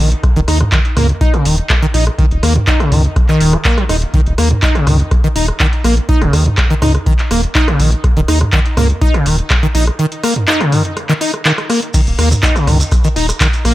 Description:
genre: acid house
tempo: 123 BPM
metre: 4/4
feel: straight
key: unclear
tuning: A4 = 440 Hz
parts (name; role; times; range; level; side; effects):
- acid bass, saw; riff; 0.0-13.7 s; Db3 to Eb4; -16 LUFS; equal; ensemble chorus, sidechain pumping, dub echo
- round analog bass; bass; 0.0-13.7 s; Eb1 to Eb2; -13 LUFS; equal; tube saturation, sidechain pumping
- electro analog drum machine; drums; 0.1-13.7 s; crash cymbal, handclaps, hi-hat, rim click, toms; -17 LUFS; right 1 dB; none
- electronic kick drum; drums; 0.2-13.5 s; none; -14 LUFS; equal; none
- shekere; percussion; 11.9-13.6 s; none; -25 LUFS; right 2 dB; dub echo
room: light reverb, digital ambience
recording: echo-heavy mix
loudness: -10 LUFS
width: side -16 dB against mid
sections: 0.0-13.7 A section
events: none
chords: 0.0 Eb5

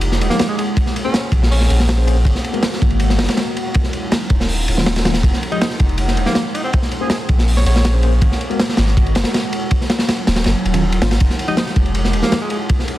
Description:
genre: drum and bass, jungle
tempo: 161 BPM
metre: 4/4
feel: straight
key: F phrygian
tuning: A4 = 440 Hz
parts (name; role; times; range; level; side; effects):
- warbly tape-like pad; sustained chords; 0.0-13.0 s; Gb3 to Ab4; -25 LUFS; right 1 dB; chorus, built-in reverb, vintage 12-bit sampler grit
- soft dub sub bass; bass; 0.0-12.2 s; Eb1 to Bb1; -16 LUFS; equal; none
- crunchy breakbeat drum kit; drums; 0.0-13.0 s; hi-hat, kick drum, ride cymbal, snare drum; -17 LUFS; equal; none
- breathy tenor saxophone; melody; 0.3-1.8, 5.5-7.9, 11.5-12.6 s; Ab3 to Db5; -26 LUFS; right 1 dB; dub echo
- mellow tine electric piano; stabs; 0.3-12.4 s; Eb3 to C5; -26 LUFS; left 2 dB; medium stereo tremolo, vintage 12-bit sampler grit, dub echo
room: light reverb, small room ambience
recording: dense, heavily limited modern master, vinyl crackle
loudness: -14 LUFS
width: side -15 dB against mid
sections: 0.0-13.0 A section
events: none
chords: 0.0 Fm9; 0.8 Bbm9; 2.3 Abm9; 3.7 Ebm9; 5.2 Fm9; 6.7 Bbm9; 8.2 Abm9; 9.7 Ebm9; 11.2 Fm9

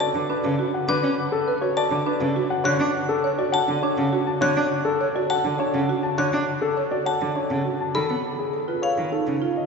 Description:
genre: classical, minimalist pattern music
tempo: 102 BPM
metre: 3/4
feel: straight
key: unclear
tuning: A4 = 440 Hz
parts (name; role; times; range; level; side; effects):
- warm baby grand piano; melody; 0.0-9.7 s; G#4 to A5; -25 LUFS; left 4 dB; none
- buzzing marimba with medium mallets; arpeggios; 0.0-9.6 s; D4 to C#5; -28 LUFS; right 5 dB; none
- xylophone with wooden mallets; arpeggios; 0.0-9.0 s; E#5 to F#6; -28 LUFS; equal; none
- rich cello; accompaniment; 0.1-9.4 s; C#3 to D4; -26 LUFS; right 1 dB; none
room: wet cathedral reverb, RT60 4.8 s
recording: recorded in a church or concert hall, nothing above 7.9 kHz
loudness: -21 LUFS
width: side -4 dB against mid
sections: 0.0-9.7 A section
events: none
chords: 0.0 Bm7; 2.7 D; 7.9 C#7b13 (rootless)

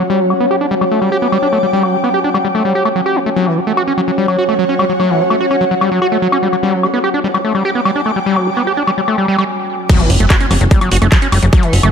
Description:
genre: psychedelic trance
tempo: 147 BPM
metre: 4/4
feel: straight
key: F# phrygian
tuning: A4 = 436 Hz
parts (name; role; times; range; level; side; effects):
- overtone-sweeping drone; sustained chords; 0.0-11.9 s; F#3 to C#4; -19 LUFS; equal; chorus, built-in reverb, phaser, sidechain pumping
- overdriven acid bass; riff; 0.0-11.9 s; E3 to G4; -15 LUFS; equal; distortion, auto-pan, sidechain pumping, dub echo
- techno drum kit; drums; 0.0-11.9 s; crash cymbal, handclaps, hi-hat, woodblock; -20 LUFS; left 2 dB; low-pass filter on hats, low-pass filter on perc, low-pass filter on snare, low-pass filter on cymbals, low-pass filter on room
- ethereal airy pad; texture; 0.0-9.5 s; F#4 to D6; -20 LUFS; equal; ensemble chorus, built-in reverb, sidechain pumping
- vowel-sweep wobble bass; second line; 3.4-11.9 s; F#3 to B3; -31 LUFS; right 4 dB; none
- electronic kick drum; drums; 9.9-11.6 s; none; -11 LUFS; equal; overdrive
- impact; sound effects; 9.9-11.5 s; none; -20 LUFS; equal; none
- plucky analog bass; bass; 10.1-11.9 s; F#1; -12 LUFS; equal; none
room: moderate lush hall reverb, RT60 2.0 s, digital ambience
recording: none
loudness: -11 LUFS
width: side -6 dB against mid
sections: 0.0-9.9 A section; 9.9-11.9 B section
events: filter sweep on acid bass 0.0-9.9; stop 9.5-9.9; drop 9.9-11.9; impact 9.9-11.5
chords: 0.1 G5; 3.4 F#5; 6.6 G5; 9.9 F#5

